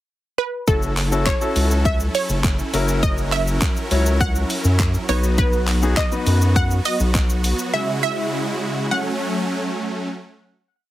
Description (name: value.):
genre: dance-pop.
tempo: 102 BPM.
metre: 4/4.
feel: straight.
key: F# dorian.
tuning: A4 = 435 Hz.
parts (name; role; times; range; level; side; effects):
wide unison pluck; melody; 0.4-9.8 s; A4 to F#5; -24 LUFS; moving between left 2 dB and right 5 dB; auto-pan, tape echo.
clear baby grand piano; accompaniment; 0.7-6.7 s; B3 to C#5; -25 LUFS; left 4 dB; sidechain pumping.
supersaw chords; sustained chords; 0.7-10.1 s; C#3 to A#4; -25 LUFS; equal; sidechain pumping.
round analog bass; bass; 0.7-7.5 s; F#1 to F#2; -19 LUFS; equal; sidechain pumping.
pop drum kit; drums; 0.7-7.7 s; handclaps, hi-hat, kick drum, shaker; -22 LUFS; equal; none.
room: little or no reverb.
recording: heavily compressed radio sound, multiband compression.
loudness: -18 LUFS.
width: side -14 dB against mid.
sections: 0.0-0.7 pickup bar; 0.7-10.1 chorus.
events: none.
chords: 0.0 N.C.; 0.7 F#m7; 2.7 F#7; 5.1 B; 7.7 C#m; 8.9 F#m.